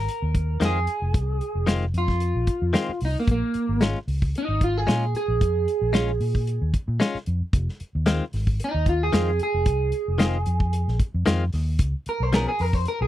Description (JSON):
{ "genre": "straight-eighth soul blues", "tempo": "113 BPM", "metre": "4/4", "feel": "straight", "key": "F minor", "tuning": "A4 = 440 Hz", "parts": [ { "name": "electric guitar at the edge of break-up", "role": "melody", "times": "0.0-13.1 s", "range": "Bb3 to C5", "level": "-26 LUFS", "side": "right 2 dB", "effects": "wide subtle chorus" }, { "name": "vintage muted fingered electric bass", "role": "bass", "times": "0.0-13.1 s", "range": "F1 to Bb2", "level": "-24 LUFS", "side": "equal", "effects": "none" }, { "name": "warm soul drum kit", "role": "drums", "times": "0.1-13.0 s", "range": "hi-hat, kick drum, snare drum", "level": "-23 LUFS", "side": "equal", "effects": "none" }, { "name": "direct-recorded clean electric guitar", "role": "stabs", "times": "0.6-12.5 s", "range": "Eb3 to Ab4", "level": "-25 LUFS", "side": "left 4 dB", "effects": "none" } ], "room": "little or no reverb", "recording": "dry, close 1970s-style studio recording", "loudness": "-21 LUFS", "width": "side -13 dB against mid", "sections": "0.0-13.1 A section", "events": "clean electric guitar solo 0.0-13.1", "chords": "0.0 Fm7; 3.3 Bbm7; 7.5 Fm7; 11.8 Db7" }